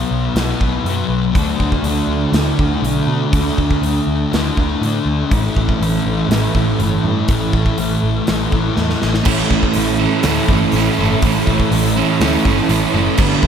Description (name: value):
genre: rock, shoegaze and dream pop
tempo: 122 BPM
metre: 4/4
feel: straight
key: unclear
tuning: A4 = 440 Hz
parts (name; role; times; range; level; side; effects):
- thick fuzz guitar; riff; 0.0-13.5 s; G2 to D4; -18 LUFS; left 5 dB; distortion, wide subtle chorus
- vintage muted picked electric bass; bass; 0.0-13.5 s; F#1 to B2; -20 LUFS; equal; none
- gated 80s drum kit; drums; 0.4-13.5 s; crash cymbal, hi-hat, kick drum, snare drum; -20 LUFS; equal; none
- overdriven semi-hollow guitar; riff; 1.3-13.5 s; G2 to F#4; -19 LUFS; right 8 dB; reverse reverb
room: wet cathedral reverb, RT60 5.1 s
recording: dreamy mix soaked in reverb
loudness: -14 LUFS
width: side -8 dB against mid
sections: 0.0-9.3 A section; 9.3-13.5 B section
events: drum fill 8.8-9.3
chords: 0.0 B5; 1.4 D; 5.3 A